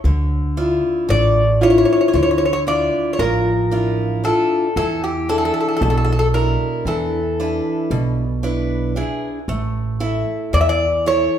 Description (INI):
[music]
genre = greek folk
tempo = 114 BPM (eighths)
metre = 9/8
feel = straight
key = D harmonic minor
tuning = A4 = 438 Hz
[part]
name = upright bass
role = bass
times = 0.0-11.3 s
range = A1 to E2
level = -20 LUFS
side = right 1 dB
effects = none
[part]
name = picked acoustic archtop guitar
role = accompaniment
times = 0.1-11.4 s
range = B2 to E5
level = -20 LUFS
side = left 1 dB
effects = none
[part]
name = Greek bouzouki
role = melody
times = 1.1-11.4 s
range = G4 to E5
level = -19 LUFS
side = left 1 dB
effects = none
[sound]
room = wet large studio reverb, RT60 1.2 s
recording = band playing live in one room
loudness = -16 LUFS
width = side -9 dB against mid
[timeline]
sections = 0.0-11.4 A section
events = none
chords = 0.0 Dmadd9; 4.8 E7; 9.5 A